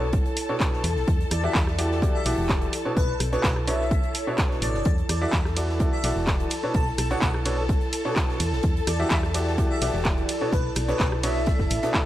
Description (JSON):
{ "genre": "piano house", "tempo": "127 BPM", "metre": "4/4", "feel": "straight", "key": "B minor", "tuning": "A4 = 443 Hz", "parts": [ { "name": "dark symphonic violin section", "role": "sustained chords", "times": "0.0-12.1 s", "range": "A4 to A5", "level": "-35 LUFS", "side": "left 2 dB", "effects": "sidechain pumping" }, { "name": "clear baby grand piano", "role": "riff", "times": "0.0-12.1 s", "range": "B2 to E5", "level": "-30 LUFS", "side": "equal", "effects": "sidechain pumping" }, { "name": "solid FM bass", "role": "bass", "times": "0.0-11.8 s", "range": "E1 to E2", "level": "-27 LUFS", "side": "equal", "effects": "sidechain pumping" }, { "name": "airy breathy pad", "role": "texture", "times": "0.0-12.1 s", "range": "E4 to D5", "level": "-32 LUFS", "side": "right 1 dB", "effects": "chorus, sidechain pumping" }, { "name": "electronic kick drum", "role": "drums", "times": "0.1-12.0 s", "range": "none", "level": "-25 LUFS", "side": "equal", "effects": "none" }, { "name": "open jazz drum kit", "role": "drums", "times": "0.1-12.1 s", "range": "hi-hat, snare drum", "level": "-43 LUFS", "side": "right 2 dB", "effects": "high-pass filter on hats, high-pass filter on snare, high-pass filter on room" }, { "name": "punchy analog drum machine", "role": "drums", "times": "0.4-12.0 s", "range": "handclaps, hi-hat, ride cymbal, rim click", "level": "-30 LUFS", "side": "equal", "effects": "none" }, { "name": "airy dreamy lead", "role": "melody", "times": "1.3-11.9 s", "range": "B4 to A5", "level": "-32 LUFS", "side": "left 1 dB", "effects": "chorus, vintage 12-bit sampler grit, tape echo" } ], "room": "light reverb, studio reverb", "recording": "dry, gritty hardware recording, transformer saturation", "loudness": "-22 LUFS", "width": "side -14 dB against mid", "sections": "0.0-12.1 A section", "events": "none", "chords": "0.0 Bm9; 0.8 Em9; 2.7 Bm9; 4.9 E9sus4; 6.5 Bm9; 8.4 Em9; 10.3 Bm9" }